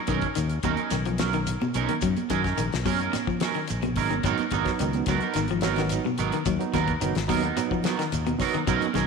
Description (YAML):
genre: afrobeat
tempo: 108 BPM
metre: 4/4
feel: straight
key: G# dorian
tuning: A4 = 440 Hz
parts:
  - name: electric guitar at the edge of break-up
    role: arpeggios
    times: 0.1-9.1 s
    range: B2 to F#3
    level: -30 LUFS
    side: left 11 dB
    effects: none
  - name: electric guitar at the edge of break-up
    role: stabs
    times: 0.1-9.1 s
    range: F#3 to A#4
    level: -28 LUFS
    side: right 8 dB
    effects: analog chorus, tape echo
  - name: fingered electric bass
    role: bass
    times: 0.1-9.1 s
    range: F#1 to F#2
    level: -29 LUFS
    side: left 1 dB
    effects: none
  - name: damped 70s drum kit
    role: drums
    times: 0.1-9.1 s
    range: hi-hat, kick drum, snare drum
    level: -32 LUFS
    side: left 5 dB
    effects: none
  - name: congas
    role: percussion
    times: 0.1-9.1 s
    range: none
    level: -34 LUFS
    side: right 13 dB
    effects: none
  - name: shekere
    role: percussion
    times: 0.1-9.1 s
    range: none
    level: -39 LUFS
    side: right 6 dB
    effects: none
  - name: barky tine electric piano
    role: accompaniment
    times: 4.3-8.9 s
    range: F#3 to D#4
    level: -31 LUFS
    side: right 11 dB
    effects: overdrive, fast tremolo
room: moderate echo chamber reverb, RT60 1.8 s, studio reverb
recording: 1960s-style stereo with parts hard left and right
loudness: -23 LUFS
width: side -5 dB against mid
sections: 0.0-9.1 A section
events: none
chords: 0.0 Bmaj9; 4.3 G#m9